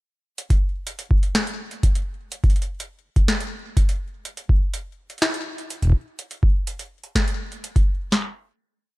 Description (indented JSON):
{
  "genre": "IDM",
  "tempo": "124 BPM",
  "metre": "4/4",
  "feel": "straight",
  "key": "none",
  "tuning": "none",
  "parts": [
    { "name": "booming analog drum machine", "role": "drums", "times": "0.4-7.9 s", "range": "hi-hat, snare drum", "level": "-25 LUFS", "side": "equal", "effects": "overdrive, ping-pong delay" },
    { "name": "booming analog drum machine", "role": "drums", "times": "0.5-8.2 s", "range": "kick drum, snare drum", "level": "-18 LUFS", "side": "equal", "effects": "overdrive" }
  ],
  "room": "little or no reverb",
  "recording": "none",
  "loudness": "-20 LUFS",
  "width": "side -20 dB against mid",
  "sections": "0.4-8.1 groove; 8.1-9.0 final hit",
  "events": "none",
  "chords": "none"
}